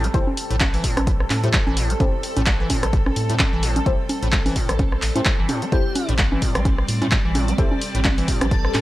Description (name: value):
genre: acid house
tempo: 129 BPM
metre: 4/4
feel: swing 57% on 16ths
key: A minor pentatonic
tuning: A4 = 443 Hz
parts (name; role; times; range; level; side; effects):
- string machine, full ensemble; sustained chords; 0.0-8.8 s; G3 to D5; -29 LUFS; right 1 dB; phaser, ensemble chorus, sidechain pumping
- liquid acid bass; riff; 0.0-8.6 s; A2 to C4; -28 LUFS; equal; chorus, overdrive, sidechain pumping, analog delay
- round analog bass; bass; 0.0-8.8 s; G1 to A2; -24 LUFS; equal; tube saturation, sidechain pumping
- punchy analog drum machine; drums; 0.0-8.8 s; congas, handclaps, hi-hat, rim click; -23 LUFS; equal; none
- deep mellow chord stab; stabs; 0.1-7.7 s; E4 to C5; -30 LUFS; left 3 dB; chorus, phaser, vintage 12-bit sampler grit, analog delay
- electronic kick drum; drums; 0.1-8.6 s; none; -21 LUFS; equal; none
- airy dreamy lead; melody; 5.7-8.8 s; G4 to A4; -30 LUFS; left 4 dB; chorus, phaser, tape echo
room: little or no reverb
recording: none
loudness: -18 LUFS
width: side -16 dB against mid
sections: 0.0-8.8 A section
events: none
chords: 0.0 Am7